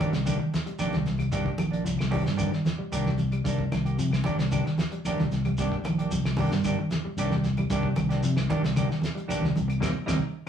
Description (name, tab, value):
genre	afrobeat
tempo	113 BPM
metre	4/4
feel	straight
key	C minor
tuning	A4 = 440 Hz
part	mellow electric guitar	arpeggios	0.0-10.5 s	C3 to Bb3	-31 LUFS	left 3 dB	none
part	clean electric guitar	stabs	0.0-10.2 s	Eb3 to G4	-32 LUFS	right 3 dB	none
part	fingered electric bass	bass	0.0-10.2 s	Bb1 to C3	-27 LUFS	equal	none
part	damped 70s drum kit	drums	0.0-10.2 s	hi-hat, kick drum, snare drum	-34 LUFS	right 1 dB	none
part	congas	percussion	0.0-10.2 s	none	-32 LUFS	right 1 dB	none
part	shekere	percussion	0.0-10.2 s	none	-38 LUFS	right 1 dB	none
part	claves	percussion	0.3-10.2 s	none	-42 LUFS	left 2 dB	none
room	light reverb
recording	rough rehearsal-room recording, tube saturation, studio reverb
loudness	-24 LUFS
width	side -8 dB against mid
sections	0.0-10.5 A section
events	band accent 9.8-10.5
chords	0.0 Cm9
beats	0.27 0.80 | 1.33 1.86 2.39 2.92 | 3.46 3.99 4.52 5.05 | 5.58 6.11 6.64 7.17 | 7.70 8.23 8.76 9.29 | 9.82 10.35